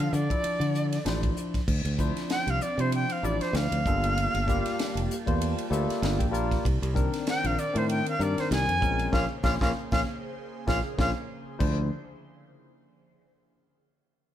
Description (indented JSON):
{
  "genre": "electric jazz fusion",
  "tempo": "97 BPM",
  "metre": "4/4",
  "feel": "swing 56% on 16ths",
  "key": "unclear",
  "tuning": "A4 = 436 Hz",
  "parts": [
    { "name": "bright reedy jazz flute", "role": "melody", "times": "0.0-11.1 s", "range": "C5 to G#5", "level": "-30 LUFS", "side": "right 1 dB", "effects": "none" },
    { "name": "bright trombone", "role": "second line", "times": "0.0-1.4 s", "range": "D3 to F3", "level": "-42 LUFS", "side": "right 1 dB", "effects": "none" },
    { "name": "barky tine electric piano", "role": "accompaniment", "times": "0.0-11.9 s", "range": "Eb3 to A5", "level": "-32 LUFS", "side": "left 3 dB", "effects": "none" },
    { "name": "fingered electric bass", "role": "bass", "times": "0.0-11.9 s", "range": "F1 to D3", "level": "-28 LUFS", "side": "equal", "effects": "none" },
    { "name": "tight funk drum kit", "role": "drums", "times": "0.0-11.8 s", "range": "crash cymbal, hi-hat, kick drum, ride cymbal, snare drum", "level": "-31 LUFS", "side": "equal", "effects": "none" },
    { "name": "airy breathy pad", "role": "sustained chords", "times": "1.7-11.9 s", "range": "Db3 to A5", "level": "-40 LUFS", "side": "right 1 dB", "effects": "chorus, phaser" }
  ],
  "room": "moderate stone room reverb, RT60 1.2 s",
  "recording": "band playing live in one room",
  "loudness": "-25 LUFS",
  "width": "side -11 dB against mid",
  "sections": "0.0-1.7 A section; 1.7-11.6 B section; 11.6-14.1 C section",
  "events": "flute solo 1.7-11.6; tine electric piano fill 5.4-6.7; band accent 9.1-11.6; drum fill 11.0-11.6",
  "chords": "0.0 Dm9; 3.9 Gm9; 6.7 Cm9; 8.8 Bbm9; 11.6 Dm9"
}